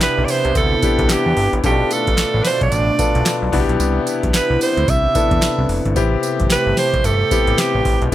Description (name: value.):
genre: R&B, new jack swing.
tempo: 111 BPM.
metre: 4/4.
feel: swing 61% on 16ths.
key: A minor.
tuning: A4 = 442 Hz.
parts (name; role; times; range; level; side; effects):
edgy alto saxophone; melody; 0.0-8.0 s; G4 to E5; -19 LUFS; right 3 dB; none.
warm concert grand piano; accompaniment; 0.0-8.1 s; B3 to A4; -21 LUFS; left 6 dB; none.
chorused pulse-width pad; sustained chords; 0.0-8.1 s; B2 to G4; -24 LUFS; right 1 dB; none.
booming analog drum machine; drums; 0.0-8.1 s; handclaps, hi-hat, kick drum, snare drum, tambourine; -20 LUFS; equal; none.
fat analog bass; bass; 0.2-8.1 s; F1 to E2; -20 LUFS; equal; none.
room: little or no reverb.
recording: none.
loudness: -14 LUFS.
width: side -13 dB against mid.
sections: 0.0-8.1 A section.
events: none.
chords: 0.0 Cmaj7; 1.6 Bm7b5; 3.5 Cmaj7; 6.0 Am7.